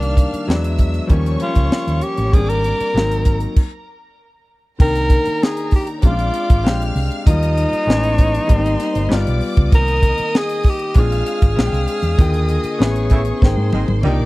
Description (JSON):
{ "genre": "lush 1970s-style soul", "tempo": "97 BPM", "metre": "4/4", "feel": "straight", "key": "C minor from 4.8 s", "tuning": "A4 = 438 Hz", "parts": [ { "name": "breathy tenor saxophone", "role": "melody", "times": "0.0-14.1 s", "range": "D4 to Bb4", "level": "-21 LUFS", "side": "equal", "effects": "none" }, { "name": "rich studio violin section", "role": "second line", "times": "0.0-14.3 s", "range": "Bb4 to F6", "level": "-30 LUFS", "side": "equal", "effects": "tape echo" }, { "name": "clear concert grand piano", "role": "accompaniment", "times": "0.0-14.3 s", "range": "D3 to G5", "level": "-24 LUFS", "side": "left 3 dB", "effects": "none" }, { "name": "hollow-body short-scale fingered electric bass", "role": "bass", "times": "0.0-14.3 s", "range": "G1 to Ab2", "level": "-19 LUFS", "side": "equal", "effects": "none" }, { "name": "tight funk drum kit", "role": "drums", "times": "0.0-14.2 s", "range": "crash cymbal, hi-hat, kick drum, snare drum, toms", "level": "-14 LUFS", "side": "equal", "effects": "none" }, { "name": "worn celesta", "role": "texture", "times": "4.8-8.8, 13.4-14.3 s", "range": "Eb4 to G#5", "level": "-35 LUFS", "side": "right 2 dB", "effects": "none" }, { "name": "mellow horn section", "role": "stabs", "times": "13.1-14.3 s", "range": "Bb2 to E4", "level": "-25 LUFS", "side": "right 3 dB", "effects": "none" } ], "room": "studio reverb", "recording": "dry, close 1970s-style studio recording", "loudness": "-14 LUFS", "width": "side -20 dB against mid", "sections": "0.0-4.8 A section; 4.8-14.3 B section", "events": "tenor saxophone solo 0.0-4.8; stop 3.6-4.8; band accent 12.2-14.3; drum fill 13.4-14.3", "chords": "0.5 E9; 1.1 Eb7; 2.3 Abmaj9#11; 2.9 Ab9; 3.6 N.C.; 4.8 Cm7; 6.0 Bb9; 6.6 Bb13; 7.3 Ebadd9; 7.9 Amaj7; 8.5 Abmaj7; 9.1 G7; 9.7 Cm7; 11.0 Bb9; 11.6 Bb13; 12.2 Ebmaj9; 12.8 Amaj7; 13.4 Abmaj7" }